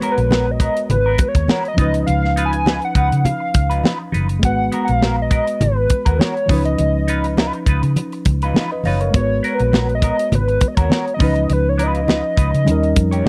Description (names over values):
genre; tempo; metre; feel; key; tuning
lush 1970s-style soul; 102 BPM; 4/4; swing 54% on 16ths; G# dorian; A4 = 441 Hz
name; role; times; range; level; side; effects
hollow square lead; melody; 0.0-13.3 s; B4 to G#5; -23 LUFS; equal; chorus
tine electric piano; accompaniment; 0.0-13.3 s; E3 to E#5; -26 LUFS; equal; none
clean electric guitar; riff; 0.0-13.3 s; B3 to C#5; -28 LUFS; equal; wah, spring reverb
tight funk drum kit; drums; 0.0-13.3 s; hi-hat, kick drum, snare drum; -20 LUFS; equal; none
congas; percussion; 0.0-13.3 s; none; -26 LUFS; equal; none
vintage muted fingered electric bass; bass; 0.2-13.2 s; F#1 to C#3; -21 LUFS; equal; tube saturation
room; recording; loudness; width
little or no reverb; dry, close 1970s-style studio recording; -17 LUFS; mono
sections
0.0-13.3 A section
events
none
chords
0.0 G#m9; 1.8 C#9; 4.4 G#m9; 6.5 C#9; 9.1 G#m9; 11.2 C#9; 12.7 D#7